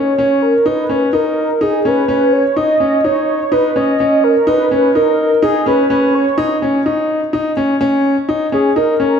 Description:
electronica; 126 BPM; 4/4; straight; A4 = 438 Hz
warm velvety synth lead; melody; 0.0-9.2 s; G#4 to D#5; -14 LUFS; right 1 dB; chorus, ping-pong delay
clear concert grand piano; riff; 0.0-9.2 s; C#4 to D#4; -15 LUFS; left 1 dB; ping-pong delay
wet recital hall reverb, RT60 1.6 s, small room ambience; -12 LUFS; side -7 dB against mid
0.0-8.3 A section
build-up 0.0-8.3; break 6.4-8.3
0.0 Bmaj9/C#

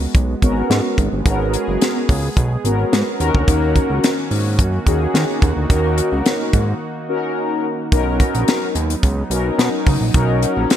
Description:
early-eighties boogie funk; 108 BPM; 4/4; straight; A4 = 441 Hz
brassy analog pad; sustained chords; 0.0-10.8 s; D#3 to G#4; -26 LUFS; right 2 dB; chorus
fat analog bass; bass; 0.0-10.7 s; F#1 to D#3; -19 LUFS; right 1 dB
tight funk drum kit; drums; 0.1-10.8 s; hi-hat, kick drum, snare drum; -17 LUFS; equal
mellow synth brass; accompaniment; 0.4-10.8 s; B3 to A#4; -21 LUFS; left 2 dB; chorus
light reverb, small room ambience; bright 1980s-style digital production; -15 LUFS; side -10 dB against mid
0.0-7.9 A section; 7.9-10.8 B section
break 6.8-7.9
0.0 G#m11; 3.2 D#m7; 7.9 Bmaj9

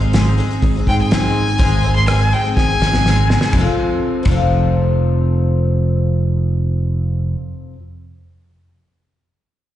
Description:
folk rock and heartland rock; 123 BPM; 4/4; straight; A4 = 440 Hz
picked twelve-string acoustic guitar; accompaniment; 0.0-7.8 s; F2 to A4; -21 LUFS; left 4 dB; slapback echo
modern bright fingered electric bass; bass; 0.0-7.3 s; F1 to Ab2; -16 LUFS; right 1 dB
cloth-damped thuddy drum kit; drums; 0.1-4.4 s; hi-hat, kick drum, ride cymbal, rim click, snare drum; -19 LUFS; equal
clear fiddle; melody; 0.9-3.5 s; G5 to C6; -21 LUFS; left 2 dB; slapback echo, digital delay
light reverb; live gig heard through the venue's PA, recital hall reverb, nothing above 10.5 kHz; -14 LUFS; side -12 dB against mid
0.0-3.5 A section; 3.5-7.4 B section
fiddle solo 0.0-3.5; drum fill 2.6-3.5
0.0 Ab; 3.5 F

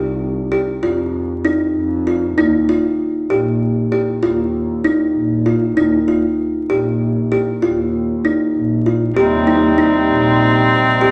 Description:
contemporary instrumental, chamber music in an uneven meter; 194 BPM (eighths); 11/8; straight; Eb major; A4 = 439 Hz
kalimba; arpeggios; 0.0-11.1 s; Eb4 to G4; -19 LUFS; equal
muted double bass; bass; 0.0-11.1 s; Bb1 to F2; -22 LUFS; equal
clear viola; second line; 9.2-11.1 s; C4; -19 LUFS; equal
pedal harmonium; sustained chords; 9.2-11.1 s; C3 to Eb4; -20 LUFS; equal
wet recital hall reverb, RT60 1.4 s; vinyl crackle; -16 LUFS; mono
0.0-9.2 A section; 9.2-11.1 B section
0.0 F5; 2.4 Ebadd9; 9.2 Eb6

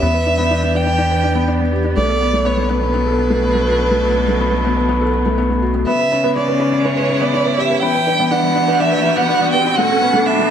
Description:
piano and strings electronica; 123 BPM; 4/4; straight; B minor; A4 = 440 Hz
dark violin; melody; 0.0-10.5 s; B4 to G5; -18 LUFS; right 2 dB
rich string quartet; sustained chords; 0.0-10.5 s; B2 to B4; -22 LUFS; equal
felt-muted upright piano; riff; 0.0-10.5 s; A3 to B4; -18 LUFS; left 2 dB; ping-pong delay
round analog bass; bass; 0.0-10.5 s; E1 to F#2; -21 LUFS; right 1 dB; high-pass filter
soft round pluck; arpeggios; 5.9-10.4 s; A4 to B5; -24 LUFS; right 3 dB; wide subtle chorus, ping-pong delay
riser; sound effects; 7.6-10.5 s; -24 LUFS; right 1 dB
moderate echo chamber reverb, RT60 1.7 s, studio ambience; -14 LUFS; side -8 dB against mid
0.0-5.9 A section; 5.9-10.5 B section
build-up 5.9-10.5; riser 7.6-10.5
0.0 Em7; 2.0 Bm7; 5.9 C#m7b5; 7.8 Em7; 9.8 Bm7

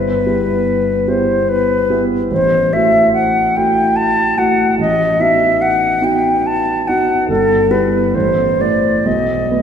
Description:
classical, romantic duo for flute and grand piano; 72 BPM; 3/4; rubato; A4 = 444 Hz
mellow concert flute; melody; 0.0-9.6 s; A4 to A5; -14 LUFS; left 2 dB
dark grand piano; accompaniment; 0.0-9.6 s; G1 to C5; -16 LUFS; right 2 dB
wet church reverb, RT60 2.9 s; recorded in a church or concert hall; -12 LUFS; side -8 dB against mid
0.0-9.6 A section
0.0 Em/G; 2.3 A5; 4.8 B7/A; 7.3 Em/G; 8.1 Am; 9.1 B7

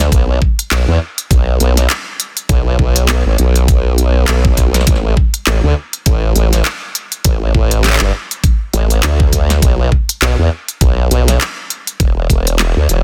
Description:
glitch hop; 101 BPM; 4/4; swing 57% on 16ths; A4 = 440 Hz
formant-sweep wobble bass; bass; 0.0-13.0 s; E1 to E2; -14 LUFS; equal; chorus
pop drum kit; drums; 0.0-13.0 s; handclaps, hi-hat, snare drum; -20 LUFS; equal
electronic kick drum; drums; 0.1-12.4 s; -15 LUFS; equal
little or no reverb; dense, heavily limited modern master; -13 LUFS; mono
0.0-13.0 A section

